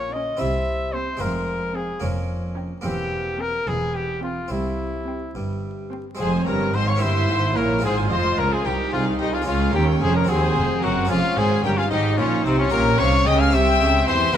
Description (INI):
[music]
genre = classical, baroque-style concerto movement with solo episodes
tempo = 74 BPM (dotted quarters)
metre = 6/8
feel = straight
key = F minor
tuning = A4 = 440 Hz
[part]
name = clear trumpet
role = melody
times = 0.0-14.4 s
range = C4 to F5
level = -24 LUFS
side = left 2 dB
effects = none
[part]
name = harpsichord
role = accompaniment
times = 0.0-14.4 s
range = C2 to Bb4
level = -29 LUFS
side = equal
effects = none
[part]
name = rich chamber cello section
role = bass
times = 0.0-14.4 s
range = C2 to E3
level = -26 LUFS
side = right 2 dB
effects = none
[part]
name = rich chamber double bass section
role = bass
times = 0.0-14.4 s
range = E1 to E2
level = -25 LUFS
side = right 1 dB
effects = none
[part]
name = warm chamber violin section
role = melody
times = 0.1-14.4 s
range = C5 to F6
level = -27 LUFS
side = left 4 dB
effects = none
[part]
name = rich chamber violin section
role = second line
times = 0.1-14.4 s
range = Eb4 to Ab5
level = -28 LUFS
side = left 2 dB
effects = none
[part]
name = dark chamber viola section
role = accompaniment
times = 0.1-14.4 s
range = C4 to F4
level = -29 LUFS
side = right 3 dB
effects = none
[sound]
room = moderate concert hall reverb, RT60 2.4 s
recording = vinyl crackle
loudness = -19 LUFS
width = side -9 dB against mid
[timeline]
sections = 0.0-6.2 A section; 6.2-14.4 B section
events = none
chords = 0.4 C; 1.2 Fm; 2.0 Gm7b5/F; 2.8 C7/E; 4.5 C; 6.2 Fm; 7.0 C7/G; 7.8 Fm; 9.5 Db; 10.3 Ab7; 11.1 Db/F; 12.7 Gdim/Bb; 13.5 C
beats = 0.40 | 1.21 2.03 | 2.85 3.67 | 4.51 5.36 | 6.20 7.02 | 7.84 8.66 | 9.47 10.29 | 11.10 11.91 | 12.72 13.53 | 14.35